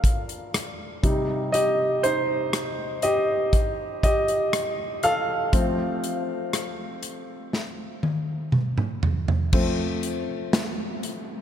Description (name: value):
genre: pop ballad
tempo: 60 BPM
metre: 4/4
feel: straight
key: unclear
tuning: A4 = 441 Hz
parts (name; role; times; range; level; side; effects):
- warm grand piano; accompaniment; 0.0-11.4 s; C3 to F5; -24 LUFS; equal; none
- modern studio drum kit; drums; 0.0-11.3 s; crash cymbal, hi-hat, kick drum, rim click, snare drum, toms; -25 LUFS; equal; none
room: wet cathedral reverb, RT60 4.9 s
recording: dreamy mix soaked in reverb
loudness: -22 LUFS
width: side -9 dB against mid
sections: 0.0-9.5 A section; 9.5-11.4 B section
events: grand piano solo 0.0-9.5, 9.5-11.4; drum fill 7.5-9.5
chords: 0.0 Bb; 1.0 Cm; 5.5 F